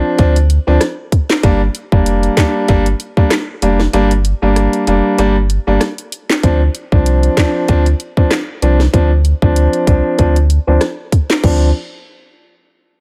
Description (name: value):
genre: dancehall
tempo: 96 BPM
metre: 4/4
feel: swing 56% on 16ths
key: D minor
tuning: A4 = 440 Hz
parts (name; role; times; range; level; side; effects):
- clear baby grand piano; accompaniment; 0.0-11.7 s; F3 to D4; -18 LUFS; equal; low-pass filter
- warm sub bass; bass; 0.2-11.7 s; F1 to D2; -15 LUFS; equal; none
- island pop drum kit; drums; 0.2-11.6 s; crash cymbal, handclaps, hi-hat, kick drum, rim click, snare drum; -16 LUFS; equal; none
room: digital ambience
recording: none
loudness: -13 LUFS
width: mono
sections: 0.0-6.4 A section; 6.4-11.4 B section; 11.4-13.0 C section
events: kick muted 3.9-6.4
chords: 0.0 Dm7; 1.4 Gm; 6.4 Dm7